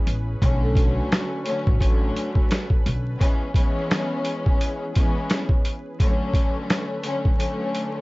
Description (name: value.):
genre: hip hop, boom-bap hip-hop.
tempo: 86 BPM.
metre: 4/4.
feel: swing 57% on 16ths.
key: B dorian.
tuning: A4 = 440 Hz.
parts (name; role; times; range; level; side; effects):
dark studio string section; accompaniment; 0.0-8.0 s; D3 to C#4; -27 LUFS; left 2 dB; cassette tape, high-pass filter, low-pass filter.
lush unison pad; sustained chords; 0.0-8.0 s; D3 to B4; -37 LUFS; equal; chorus, high-pass filter, low-pass filter.
upright bass; bass; 0.1-3.1 s; A1 to B1; -24 LUFS; equal; none.
boom bap sampler-style drum kit; drums; 0.1-7.9 s; hi-hat, kick drum, snare drum; -21 LUFS; equal; none.
vibraphone with soft mallets; melody; 0.6-2.7 s; F#4 to A4; -33 LUFS; right 1 dB; high-pass filter, low-pass filter, digital delay.
room: light reverb.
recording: vinyl crackle, nothing above 7.7 kHz.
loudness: -20 LUFS.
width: side -22 dB against mid.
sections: 0.0-8.0 A section.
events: break 7.4-8.0.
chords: 0.4 Bm9; 3.2 C#m7; 6.0 Bm9.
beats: | 0.42 1.11 1.81 2.51 | 3.21 3.91 4.60 5.30 | 6.00 6.70 7.39.